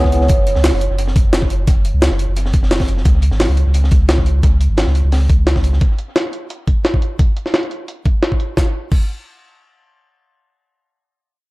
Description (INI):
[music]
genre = liquid drum and bass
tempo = 174 BPM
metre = 4/4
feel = straight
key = C# minor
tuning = A4 = 440 Hz
[part]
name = warm sub bass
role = bass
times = 0.0-5.8 s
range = F#1 to C#2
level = -15 LUFS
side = equal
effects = none
[part]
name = crunchy breakbeat drum kit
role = drums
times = 0.0-5.8 s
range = hi-hat, snare drum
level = -27 LUFS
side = equal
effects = high-pass filter on hats, high-pass filter on snare, high-pass filter on room, dub echo
[part]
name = electronic kick drum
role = drums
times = 0.0-9.0 s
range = none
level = -15 LUFS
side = equal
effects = none
[part]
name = jungle sampler-style drum kit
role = drums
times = 0.1-9.0 s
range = crash cymbal, hi-hat, snare drum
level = -19 LUFS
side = equal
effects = low-pass filter on hats, low-pass filter on cymbals, low-pass filter on perc, low-pass filter on snare, low-pass filter on room
[sound]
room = little or no reverb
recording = echo-heavy mix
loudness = -13 LUFS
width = side -21 dB against mid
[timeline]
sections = 0.0-8.6 A section; 8.6-11.3 B section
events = none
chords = none